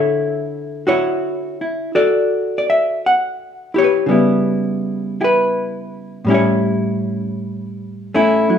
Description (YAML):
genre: jazz ballad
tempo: 55 BPM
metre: 4/4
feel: swing 68% on 8ths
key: unclear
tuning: A4 = 440 Hz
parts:
  - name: hollow-body jazz guitar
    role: solo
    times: 0.0-8.6 s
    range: A2 to F#5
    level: -16 LUFS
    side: left 1 dB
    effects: none
room: light reverb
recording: studio reverb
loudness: -15 LUFS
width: side -8 dB against mid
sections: 0.0-8.5 A section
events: none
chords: 0.0 Dmaj9; 4.1 C#m7b5; 6.3 A7